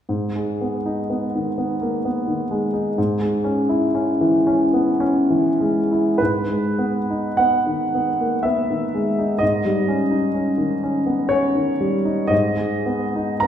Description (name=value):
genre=classical, romantic nocturne for solo piano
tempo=48-66 BPM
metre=3/4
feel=rubato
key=G# minor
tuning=A4 = 440 Hz
part: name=warm grand piano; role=solo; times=0.1-13.5 s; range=G#2 to A#5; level=-18 LUFS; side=equal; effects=none
room=wet recital hall reverb, RT60 1.5 s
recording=recorded in a church or concert hall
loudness=-18 LUFS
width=side -9 dB against mid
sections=0.1-6.2 A section; 6.2-13.5 B section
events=none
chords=0.1 G#m; 3.0 C#m/G#; 6.2 G#m; 9.4 D#7/G#; 12.3 G#m